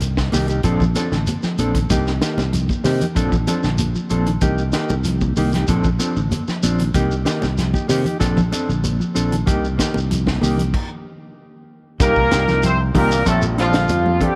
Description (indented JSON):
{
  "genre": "afrobeat",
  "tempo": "95 BPM",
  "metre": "4/4",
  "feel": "straight",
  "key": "C dorian",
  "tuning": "A4 = 438 Hz",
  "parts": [
    { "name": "mellow electric guitar", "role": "arpeggios", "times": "0.0-14.3 s", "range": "C3 to F3", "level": "-28 LUFS", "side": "equal", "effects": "none" },
    { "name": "modern bright fingered electric bass", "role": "bass", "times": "0.0-14.2 s", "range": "A1 to C3", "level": "-23 LUFS", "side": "equal", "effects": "none" },
    { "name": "tight funk drum kit", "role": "drums", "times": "0.0-14.4 s", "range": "crash cymbal, hi-hat, kick drum, snare drum", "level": "-27 LUFS", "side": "equal", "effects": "none" },
    { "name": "shekere", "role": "percussion", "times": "0.0-14.4 s", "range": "none", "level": "-31 LUFS", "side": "equal", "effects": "none" },
    { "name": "mellow electric guitar", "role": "stabs", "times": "0.3-14.4 s", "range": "F3 to A4", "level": "-26 LUFS", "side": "equal", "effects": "tremolo" },
    { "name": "congas", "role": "percussion", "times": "0.3-14.4 s", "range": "none", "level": "-28 LUFS", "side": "equal", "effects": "none" },
    { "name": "mellow horn section", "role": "melody", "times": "12.0-14.4 s", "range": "F3 to C5", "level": "-21 LUFS", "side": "equal", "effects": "none" },
    { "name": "clear trombone section", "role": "second line", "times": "12.0-14.4 s", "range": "F2 to C3", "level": "-31 LUFS", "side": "equal", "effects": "none" },
    { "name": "overdriven tine electric piano", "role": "accompaniment", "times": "12.0-14.3 s", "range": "G3 to Bb4", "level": "-32 LUFS", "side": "equal", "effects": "none" }
  ],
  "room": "moderate plate reverb, RT60 3.6 s",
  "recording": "none",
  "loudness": "-19 LUFS",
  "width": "mono",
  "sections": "0.0-12.0 A section; 12.0-14.4 B section",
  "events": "stop 10.7-12.0",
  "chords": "0.0 Cm7; 0.6 Bbmaj9; 1.9 Cm7; 3.2 Bbmaj9; 4.4 Cm7; 5.7 Bbmaj9; 7.0 Cm7; 8.2 Bbmaj9; 9.5 Cm7; 10.7 N.C.; 12.0 Cm7; 13.3 Bbmaj9"
}